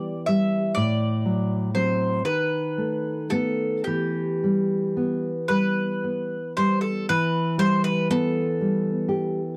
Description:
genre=romantic duo for mandolin and classical guitar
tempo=36-42 BPM (dotted quarters)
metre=6/8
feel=rubato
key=E minor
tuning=A4 = 440 Hz
part: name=mandolin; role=melody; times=0.0-9.5 s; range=G4 to E5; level=-29 LUFS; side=equal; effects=none
part: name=nylon-string guitar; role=accompaniment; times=0.0-9.6 s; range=A2 to G4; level=-26 LUFS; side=equal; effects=none
room=little or no reverb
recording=dry, close 1970s-style studio recording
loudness=-24 LUFS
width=mono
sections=0.0-7.1 A section; 7.1-9.6 B section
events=none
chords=0.0 Em; 0.8 F#dim/A; 2.3 B7/D#; 3.9 Em

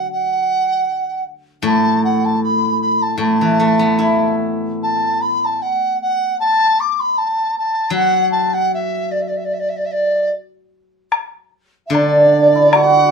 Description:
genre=chinese traditional, Chinese chamber ensemble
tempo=76 BPM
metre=2/4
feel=rubato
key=D gong mode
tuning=A4 = 442 Hz
part: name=mellow large dizi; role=melody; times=0.0-13.1 s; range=D5 to D6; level=-16 LUFS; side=right 1 dB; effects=none
part: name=steel-string zither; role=accompaniment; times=0.0-13.1 s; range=A2 to E4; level=-18 LUFS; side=left 1 dB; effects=none
part: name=woodblock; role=percussion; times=11.1-12.9 s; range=none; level=-17 LUFS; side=left 5 dB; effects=none
part: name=hammered dulcimer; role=second line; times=11.9-13.1 s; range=D4 to F#4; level=-12 LUFS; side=right 3 dB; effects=none
room=wet studio reverb, RT60 0.6 s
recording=heard from further back in the room, lossy compression artefacts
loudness=-14 LUFS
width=side -5 dB against mid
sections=0.0-11.1 A section; 11.1-13.1 B section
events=none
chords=none

